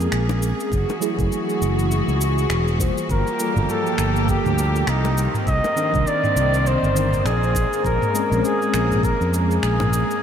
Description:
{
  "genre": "sunset chillout",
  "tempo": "101 BPM",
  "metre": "4/4",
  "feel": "swing 58% on 16ths",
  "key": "unclear",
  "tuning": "A4 = 440 Hz",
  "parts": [
    { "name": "mellow tine electric piano", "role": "accompaniment", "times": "0.0-10.2 s", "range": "Eb3 to C5", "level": "-26 LUFS", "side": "moving between left 5 dB and right 4 dB", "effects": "medium stereo tremolo, auto-pan, tape echo" },
    { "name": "bright symphonic string section", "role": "sustained chords", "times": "0.0-10.2 s", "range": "Eb3 to Ab4", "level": "-26 LUFS", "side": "equal", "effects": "none" },
    { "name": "fingered electric bass", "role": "bass", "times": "0.0-10.0 s", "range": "E1 to F2", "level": "-21 LUFS", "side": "equal", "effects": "none" },
    { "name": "smooth R&B drum kit", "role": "drums", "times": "0.0-10.2 s", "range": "finger snaps, shaker, toms", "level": "-30 LUFS", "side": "equal", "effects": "none" },
    { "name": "bongos", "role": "percussion", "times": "0.3-9.9 s", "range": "none", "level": "-35 LUFS", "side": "left 6 dB", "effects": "none" },
    { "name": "electronic kick drum", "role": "drums", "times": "0.7-9.2 s", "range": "none", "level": "-25 LUFS", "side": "equal", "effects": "none" },
    { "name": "clear flugelhorn", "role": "melody", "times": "3.1-10.2 s", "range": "Eb4 to Eb5", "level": "-22 LUFS", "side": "equal", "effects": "tape echo" }
  ],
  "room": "wet huge ambient reverb, RT60 7.1 s",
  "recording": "dreamy mix soaked in reverb",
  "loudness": "-18 LUFS",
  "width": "side -8 dB against mid",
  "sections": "0.0-10.2 A section",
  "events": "none",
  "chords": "0.0 Bbm9; 0.7 F#m9; 3.1 Gm9; 5.2 Cm9; 7.5 Bbm9"
}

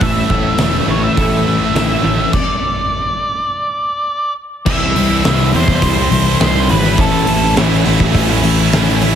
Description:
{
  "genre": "quiet-loud alternative rock",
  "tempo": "103 BPM",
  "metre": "4/4",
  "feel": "straight",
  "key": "unclear",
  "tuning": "A4 = 440 Hz",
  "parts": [
    { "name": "octave-fuzz lead guitar", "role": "melody", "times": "0.0-7.5 s", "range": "A4 to E5", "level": "-19 LUFS", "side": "equal", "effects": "distortion, analog delay" },
    { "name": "twelve-string electric guitar", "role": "arpeggios", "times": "0.0-2.3 s", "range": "A2 to A3", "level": "-22 LUFS", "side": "right 6 dB", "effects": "tremolo" },
    { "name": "thick fuzz guitar", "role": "riff", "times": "0.0-9.2 s", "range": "A2 to E4", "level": "-18 LUFS", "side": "left 10 dB", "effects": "distortion" },
    { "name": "tight distorted guitar", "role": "riff", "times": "0.0-9.2 s", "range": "A2 to E4", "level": "-20 LUFS", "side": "right 14 dB", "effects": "distortion" },
    { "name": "fuzz picked electric bass", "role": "bass", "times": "0.0-9.2 s", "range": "E1 to E2", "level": "-17 LUFS", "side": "right 1 dB", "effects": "overdrive" },
    { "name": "oversized low-tuned drum kit", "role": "drums", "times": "0.0-9.1 s", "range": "crash cymbal, hi-hat, kick drum, snare drum", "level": "-17 LUFS", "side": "equal", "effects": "none" }
  ],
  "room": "light reverb",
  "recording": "heavily compressed radio sound, multiband compression",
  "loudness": "-12 LUFS",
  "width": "side -9 dB against mid",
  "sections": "0.0-4.7 A section; 4.7-9.2 B section",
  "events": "stop 2.3-4.7",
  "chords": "0.0 A; 2.3 N.C.; 4.7 C; 7.0 A"
}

